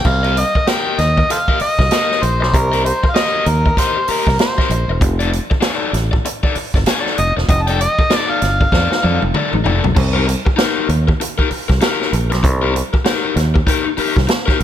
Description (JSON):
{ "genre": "funk", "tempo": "97 BPM", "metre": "4/4", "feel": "swing 60% on 16ths", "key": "C dorian", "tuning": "A4 = 438 Hz", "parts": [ { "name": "overdriven harmonica", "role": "melody", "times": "0.0-9.2 s", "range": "A4 to A5", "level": "-18 LUFS", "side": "equal", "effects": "none" }, { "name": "fingered electric bass", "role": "bass", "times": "0.0-14.6 s", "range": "E1 to F2", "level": "-18 LUFS", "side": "equal", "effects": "none" }, { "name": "swinging big-band drum kit", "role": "drums", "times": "0.0-14.6 s", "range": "crash cymbal, hi-hat, kick drum, snare drum, toms", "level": "-17 LUFS", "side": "right 1 dB", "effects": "none" }, { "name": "overdriven electric guitar", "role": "accompaniment", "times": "0.1-14.6 s", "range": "Eb4 to Eb5", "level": "-20 LUFS", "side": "left 5 dB", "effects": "none" } ], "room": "light reverb", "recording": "none", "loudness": "-13 LUFS", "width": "side -10 dB against mid", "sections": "0.0-10.0 A section; 10.0-14.6 B section", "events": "harmonica solo 0.0-10.0; drum fill 8.7-10.0", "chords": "0.1 Cm7; 5.0 F13; 10.0 Cm7" }